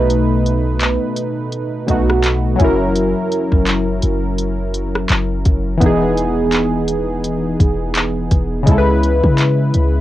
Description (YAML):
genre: contemporary R&B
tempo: 84 BPM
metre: 4/4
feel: swing 58% on 16ths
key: unclear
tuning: A4 = 439 Hz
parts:
  - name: warm analog keys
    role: accompaniment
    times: 0.0-10.0 s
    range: B2 to B4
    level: -16 LUFS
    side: equal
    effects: chorus, cassette tape
  - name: warm 808-style bass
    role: bass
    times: 0.0-10.0 s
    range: E1 to C#3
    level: -19 LUFS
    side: equal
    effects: none
  - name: smooth R&B drum kit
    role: drums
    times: 0.1-9.9 s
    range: handclaps, hi-hat, kick drum, rim click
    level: -17 LUFS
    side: equal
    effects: cassette tape
room: light reverb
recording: home recording on cassette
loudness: -14 LUFS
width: side -14 dB against mid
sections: 0.0-10.0 A section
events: none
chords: 0.0 B7; 2.6 F#7; 5.8 Emaj7; 8.7 C#m7